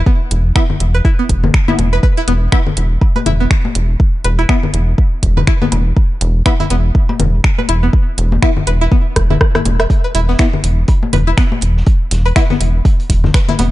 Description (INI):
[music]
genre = minimal techno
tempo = 122 BPM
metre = 4/4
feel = swing 58% on 16ths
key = unclear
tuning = A4 = 438 Hz
[part]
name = rubbery square bass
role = bass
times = 0.0-13.7 s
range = E1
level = -14 LUFS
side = equal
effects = sidechain pumping
[part]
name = string-like resonator pluck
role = riff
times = 0.1-13.6 s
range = B3 to E5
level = -22 LUFS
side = equal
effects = chorus, phaser, sidechain pumping, dub echo
[part]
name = electronic kick drum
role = drums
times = 0.1-13.5 s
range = none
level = -12 LUFS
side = equal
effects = none
[part]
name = house drum kit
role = drums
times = 0.3-13.7 s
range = finger snaps, hi-hat, rim click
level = -20 LUFS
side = right 1 dB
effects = none
[part]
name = wavetable chord stab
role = stabs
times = 0.6-12.4 s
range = B3 to E5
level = -23 LUFS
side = left 2 dB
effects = phaser, dub echo
[part]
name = cowbell and congas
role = percussion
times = 0.6-13.7 s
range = none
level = -20 LUFS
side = left 4 dB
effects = none
[part]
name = vintage drum kit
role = drums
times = 9.9-13.7 s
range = hi-hat, snare drum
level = -33 LUFS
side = equal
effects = sidechain pumping on hats, high-pass filter on hats, high-pass filter on snare, high-pass filter on room
[sound]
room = little or no reverb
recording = dark, warm production, nothing above 10.9 kHz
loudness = -11 LUFS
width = side -16 dB against mid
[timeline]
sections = 0.0-13.7 A section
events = drum fill 9.2-9.9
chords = 0.0 E5